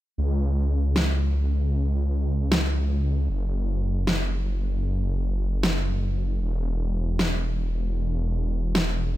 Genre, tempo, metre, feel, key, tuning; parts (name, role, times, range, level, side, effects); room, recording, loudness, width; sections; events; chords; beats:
future bass; 154 BPM; 4/4; swing 56% on 16ths, half-time; A4 = 441 Hz
wide detuned saw bass; bass; 0.2-9.2 s; E1 to C#2; -24 LUFS; equal; chorus
electronic snare drum; drums; 1.0-8.8 s; -26 LUFS; equal; overdrive
little or no reverb; -23 LUFS; side -15 dB against mid
0.2-9.2 A section
| 0.18 0.57 0.96 1.35 | 1.74 2.13 2.52 2.91 | 3.30 3.69 4.08 4.46 | 4.86 5.25 5.63 6.02 | 6.41 6.80 7.19 7.58 | 7.97 8.36 8.75 9.14